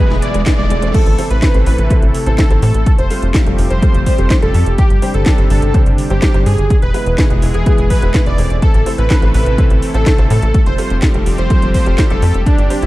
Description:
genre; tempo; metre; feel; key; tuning
italo disco; 125 BPM; 4/4; straight; A minor; A4 = 440 Hz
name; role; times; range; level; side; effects
wide unison lead; melody; 0.0-12.9 s; D4 to D5; -21 LUFS; equal; lush chorus, digital delay
warm analog pad; sustained chords; 0.0-12.9 s; B2 to A4; -22 LUFS; left 1 dB; chorus
warm grand piano; stabs; 0.0-12.9 s; G3 to C5; -23 LUFS; right 2 dB; none
riser; sound effects; 0.0-0.9 s; none; -24 LUFS; right 2 dB; none
tight sequencer bass; bass; 0.1-12.9 s; E1 to A2; -15 LUFS; equal; tube saturation
house drum kit; drums; 0.1-12.9 s; crash cymbal, handclaps, hi-hat, snare drum; -22 LUFS; equal; overdrive
electronic kick drum; drums; 0.5-12.6 s; none; -13 LUFS; equal; overdrive
room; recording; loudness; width
digital ambience; dark, warm production; -10 LUFS; side -17 dB against mid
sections
0.9-12.9 A section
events
riser 0.0-0.9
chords
0.0 E; 0.9 Am; 2.9 Fadd9; 4.8 Gsus4; 6.7 E; 8.6 Am; 10.5 Fadd9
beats
0.46 | 0.94 1.42 1.90 2.38 | 2.86 3.34 3.82 4.30 | 4.78 5.26 5.74 6.22 | 6.70 7.18 7.66 8.14 | 8.62 9.10 9.58 10.06 | 10.54 11.02 11.50 11.98 | 12.46

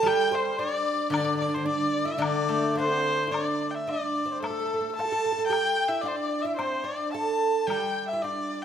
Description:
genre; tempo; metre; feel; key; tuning
chinese traditional, Chinese chamber ensemble; 110 BPM; 2/4; rubato; D shang mode; A4 = 444 Hz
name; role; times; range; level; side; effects
clear erhu; melody; 0.0-8.6 s; A4 to A5; -29 LUFS; left 1 dB; none
bright reedy large dizi; second line; 0.0-8.6 s; A4 to A5; -31 LUFS; left 6 dB; none
oud; second line; 0.0-8.6 s; A3 to A4; -30 LUFS; right 7 dB; none
steel-string zither; accompaniment; 0.0-3.9, 7.7-8.6 s; D3 to D4; -31 LUFS; left 3 dB; none
woodblock; percussion; 0.1-8.4 s; none; -37 LUFS; left 3 dB; none
room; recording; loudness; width
moderate recital hall reverb, RT60 1.5 s; none; -24 LUFS; side -8 dB against mid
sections
0.0-3.3 A section; 3.3-8.6 B section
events
none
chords
none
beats
| 0.06 0.58 | 1.12 1.66 | 2.20 2.76 | 3.33 3.88 | 4.43 4.98 | 5.51 6.05 | 6.58 7.13 | 7.69 8.25

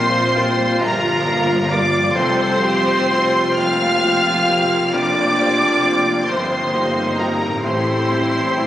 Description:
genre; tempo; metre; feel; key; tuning
cinematic; 44 BPM (dotted quarters); 6/8; rubato; unclear; A4 = 440 Hz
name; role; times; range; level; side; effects
clear studio violin section; melody; 0.0-8.7 s; Bb5 to F6; -21 LUFS; equal; none
clear clarinet; second line; 0.0-8.7 s; E4 to F4; -26 LUFS; left 1 dB; none
clear oboe; second line; 0.0-8.7 s; Bb4 to F5; -25 LUFS; right 1 dB; none
concert flute; second line; 0.0-8.7 s; F5 to G5; -28 LUFS; left 1 dB; none
rich studio violin section; second line; 0.0-8.7 s; Bb4 to F5; -24 LUFS; equal; none
bright baby grand piano; accompaniment; 0.0-8.7 s; F1 to Bb4; -25 LUFS; left 1 dB; none
clear studio viola section; accompaniment; 0.0-8.7 s; F3 to A4; -25 LUFS; right 2 dB; none
mellow French horn section; sustained chords; 0.0-8.7 s; Bb3 to D5; -25 LUFS; left 1 dB; none
concert harp; arpeggios; 0.0-8.7 s; F2 to F5; -28 LUFS; left 4 dB; none
rich studio cello section; bass; 0.0-8.7 s; F2 to Bb2; -29 LUFS; right 1 dB; none
rich studio double bass section; bass; 0.0-8.7 s; F1 to Bb1; -26 LUFS; right 1 dB; none
room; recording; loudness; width
moderate scoring stage reverb, RT60 1.5 s; recorded on a phone in the room, studio reverb, vinyl crackle; -15 LUFS; side -12 dB against mid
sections
0.0-8.7 A section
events
none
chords
0.0 Bb; 2.2 Fsus2; 7.6 Am7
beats
0.81 | 2.16 3.59 | 4.94 6.30 | 7.64

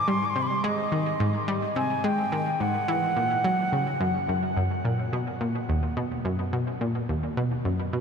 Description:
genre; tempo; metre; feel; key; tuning
ambient; 107 BPM; 4/4; straight; unclear; A4 = 442 Hz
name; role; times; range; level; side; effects
wooden flute; melody; 0.0-4.6 s; Eb5 to D6; -28 LUFS; right 1 dB; shimmer reverb, tape echo
analog pluck; riff; 0.1-8.0 s; D#2 to Ab3; -26 LUFS; equal; chorus, shimmer reverb, tape echo
room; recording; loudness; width
wet huge ambient reverb, RT60 8.0 s; dreamy mix soaked in reverb; -24 LUFS; side -6 dB against mid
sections
0.0-5.1 A section; 5.1-8.0 B section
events
none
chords
0.0 Ab; 2.9 Gb7; 5.1 B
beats
0.08 | 0.64 1.20 1.76 2.32 | 2.88 3.44 4.01 4.57 | 5.13 5.69 6.25 6.81 | 7.37 7.93

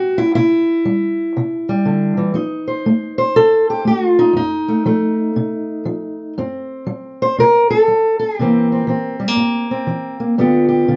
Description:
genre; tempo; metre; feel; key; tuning
acoustic country blues, solo or duo; 120 BPM; 4/4; swing 64% on 8ths; unclear; A4 = 444 Hz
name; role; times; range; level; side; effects
fingerpicked steel-string acoustic guitar; solo; 0.0-11.0 s; F2 to C5; -17 LUFS; equal; none
room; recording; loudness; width
wet studio reverb, RT60 0.7 s; dark, warm production, nothing above 7.6 kHz; -16 LUFS; mono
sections
0.0-11.0 A section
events
none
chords
0.0 C; 2.3 F7; 6.4 F#dim; 8.4 C7; 10.4 G7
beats
| 0.33 0.84 1.34 1.84 | 2.35 2.85 3.35 3.86 | 4.36 4.86 5.36 5.87 | 6.37 6.87 7.37 7.87 | 8.37 8.87 9.37 9.87 | 10.37 10.87

